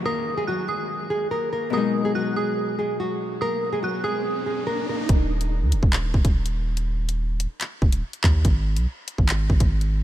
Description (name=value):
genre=hip hop, drill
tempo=143 BPM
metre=4/4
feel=half-time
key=unclear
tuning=A4 = 440 Hz
part: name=nylon-string guitar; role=melody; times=0.0-5.1 s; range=Gb3 to Bb4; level=-26 LUFS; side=right 1 dB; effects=ping-pong delay
part: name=Celtic harp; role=accompaniment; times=0.0-5.1 s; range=Cb3 to Gb4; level=-29 LUFS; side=left 6 dB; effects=none
part: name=downlifter and riser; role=sound effects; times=0.0-5.1 s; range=none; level=-35 LUFS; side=right 1 dB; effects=none
part: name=dark detuned synth bell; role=second line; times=0.1-4.6 s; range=Eb6 to Gb6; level=-32 LUFS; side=right 1 dB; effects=chorus, ping-pong delay
part: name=long sustained 808-style bass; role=bass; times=5.1-10.0 s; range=Eb1 to Eb2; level=-22 LUFS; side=equal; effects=none
part: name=drill drum kit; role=drums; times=5.1-9.9 s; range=handclaps, hi-hat, kick drum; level=-21 LUFS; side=equal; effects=none
room=light reverb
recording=none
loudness=-21 LUFS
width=side -13 dB against mid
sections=0.0-5.1 A section; 5.1-10.0 B section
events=riser 3.3-5.1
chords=0.0 Ebm; 1.7 Abm7; 5.1 N.C.